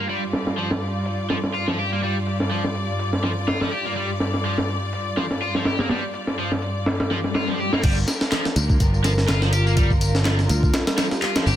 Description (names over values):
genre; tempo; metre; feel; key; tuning
breakbeat, breaks; 124 BPM; 4/4; swing 56% on 16ths; G minor; A4 = 438 Hz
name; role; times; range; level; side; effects
rich symphonic string section; sustained chords; 0.0-11.6 s; G2 to D5; -27 LUFS; equal; sidechain pumping
crunchy overdriven guitar; riff; 0.0-11.6 s; F3 to G4; -28 LUFS; equal; vintage 12-bit sampler grit, low-pass filter, dub echo
breakbeat sampler-style drum kit; drums; 0.1-11.6 s; crash cymbal, hi-hat, kick drum, snare drum; -23 LUFS; equal; low-pass filter on snare, low-pass filter on hats, low-pass filter on kick, low-pass filter on cymbals
swell; sound effects; 7.1-7.8 s; none; -31 LUFS; left 4 dB; none
picked electric bass; bass; 7.8-11.6 s; G1 to D2; -20 LUFS; equal; none
electronic tambourine and handclaps; drums; 7.8-11.6 s; none; -31 LUFS; left 2 dB; none
vibraphone with medium mallets; melody; 9.0-11.3 s; F4 to Bb4; -30 LUFS; left 2 dB; old record sound, dub echo
room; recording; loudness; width
light reverb; dense, heavily limited modern master; -20 LUFS; side -11 dB against mid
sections
0.0-7.8 A section; 7.8-11.6 B section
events
swell 7.1-7.8; drop 7.8-11.6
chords
0.0 G7(no3); 7.8 Gm7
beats
| 0.09 0.58 1.06 1.54 | 2.03 2.51 3.00 3.48 | 3.96 4.45 4.93 5.42 | 5.90 6.38 6.87 7.35 | 7.83 8.32 8.80 9.29 | 9.77 10.26 10.74 11.22